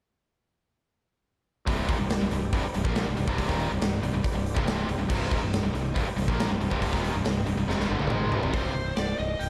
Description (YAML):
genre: hard rock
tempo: 140 BPM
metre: 4/4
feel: straight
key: C minor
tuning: A4 = 440 Hz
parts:
  - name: overdriven tonewheel organ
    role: sustained chords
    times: 1.7-8.5 s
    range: C4 to Eb5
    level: -43 LUFS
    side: equal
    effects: none
  - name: scooped high-gain guitar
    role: riff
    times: 1.7-8.7 s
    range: C2 to Bb3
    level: -35 LUFS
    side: equal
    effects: distortion, slapback echo
  - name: tight distorted guitar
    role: riff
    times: 1.7-8.7 s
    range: C2 to Bb3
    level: -34 LUFS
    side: equal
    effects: distortion, slapback echo
  - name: fuzz fingered electric bass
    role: bass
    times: 1.7-9.5 s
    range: C1 to Bb1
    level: -34 LUFS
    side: equal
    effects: overdrive
  - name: big rock drum kit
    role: drums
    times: 1.7-9.5 s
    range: crash cymbal, hi-hat, kick drum, snare drum, toms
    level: -31 LUFS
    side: equal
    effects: none
  - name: lead guitar through a small cranked amp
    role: melody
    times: 8.5-9.5 s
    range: C5 to G5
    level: -34 LUFS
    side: equal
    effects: overdrive, slapback echo
room: moderate lush hall reverb, RT60 1.9 s, small room ambience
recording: big arena sound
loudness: -27 LUFS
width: mono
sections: 1.7-8.5 A section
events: drum fill 7.7-8.5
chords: 1.7 Cm